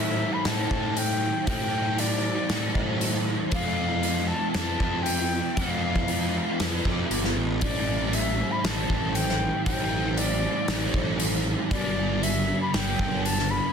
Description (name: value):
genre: rock, shoegaze and dream pop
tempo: 117 BPM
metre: 4/4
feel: straight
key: A mixolydian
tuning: A4 = 440 Hz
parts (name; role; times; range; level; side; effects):
- reedy silver concert flute; melody; 0.0-13.7 s; D5 to B5; -30 LUFS; left 3 dB; slapback echo
- crunchy overdriven guitar; riff; 0.0-13.7 s; G2 to F4; -27 LUFS; right 1 dB; ensemble chorus
- fuzz picked electric bass; bass; 0.0-13.6 s; G1 to A2; -29 LUFS; equal; overdrive
- loose indie drum kit; drums; 0.5-13.4 s; hi-hat, kick drum, snare drum; -30 LUFS; equal; none
room: light reverb, studio ambience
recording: dense, heavily limited modern master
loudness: -23 LUFS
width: side -7 dB against mid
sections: 0.0-13.7 A section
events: none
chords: 0.0 A7sus4; 3.5 F; 7.6 A7sus4; 11.7 G